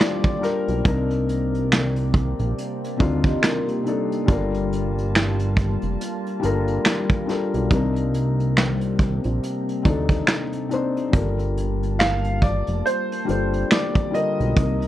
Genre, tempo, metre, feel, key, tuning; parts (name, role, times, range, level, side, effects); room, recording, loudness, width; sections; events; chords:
lo-fi hip hop; 70 BPM; 4/4; swing 58% on 16ths; G minor; A4 = 439 Hz
clear upright piano; melody; 0.0-3.0, 12.0-14.9 s; Bb4 to F5; -26 LUFS; equal; low-pass filter, plate reverb
felt-muted upright piano; accompaniment; 0.0-14.9 s; C3 to C5; -26 LUFS; left 4 dB; cassette tape, low-pass filter, plate reverb
warbly tape-like pad; sustained chords; 0.0-14.9 s; C3 to A5; -30 LUFS; left 1 dB; chorus, built-in reverb, low-pass filter
vintage brush drum kit; drums; 0.0-14.9 s; finger snaps, hi-hat, kick drum, snare drum; -20 LUFS; right 1 dB
fat analog bass; bass; 0.7-14.9 s; F1 to D2; -23 LUFS; right 1 dB
vibraphone with soft mallets; second line; 3.2-4.2 s; Bb3 to Eb5; -27 LUFS; right 4 dB; low-pass filter, analog delay, plate reverb
light reverb; -19 LUFS; side -13 dB against mid
0.0-14.9 A section
0.0 Gm7; 0.9 Cm7; 4.3 Gm7; 7.7 Cm7; 11.1 Gm7